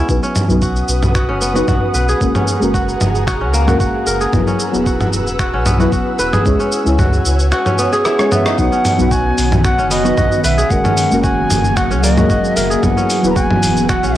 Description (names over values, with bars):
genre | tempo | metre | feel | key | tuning
organic downtempo | 113 BPM | 4/4 | swing 53% on 16ths | unclear | A4 = 440 Hz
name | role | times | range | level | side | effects
deep mellow chord stab | accompaniment | 0.0-14.2 s | F#3 to C#5 | -20 LUFS | left 1 dB | chorus, sidechain pumping, cassette tape, analog delay
kora | arpeggios | 0.0-14.2 s | A#3 to C#5 | -19 LUFS | equal | cassette tape, analog delay, plate reverb
ethereal airy pad | sustained chords | 0.5-14.2 s | D#3 to E6 | -21 LUFS | right 1 dB | ensemble chorus, built-in reverb, sidechain pumping, cassette tape
warm sub bass | bass | 0.1-14.2 s | E1 to C#2 | -18 LUFS | equal | sidechain pumping
dusty soul sampler-style drum kit | drums | 0.1-14.1 s | cabasa, finger snaps, hi-hat, rim click, toms | -19 LUFS | equal | cassette tape
electronic kick drum | drums | 0.1-14.0 s | none | -20 LUFS | equal | cassette tape
bright bansuri | melody | 8.3-14.2 s | D#5 to A#5 | -19 LUFS | equal | cassette tape, analog delay, plate reverb
room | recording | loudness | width
moderate studio reverb, RT60 0.5 s | home recording on cassette | -12 LUFS | side -13 dB against mid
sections
0.0-8.6 A section; 8.6-14.2 B section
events
filter sweep on synth stab 0.0-8.6; drum fill 8.1-8.6; band accent 8.5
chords
0.1 B; 2.2 F#add9; 4.3 Esus2; 6.5 C#m; 8.6 B; 10.7 F#add9; 12.8 Esus2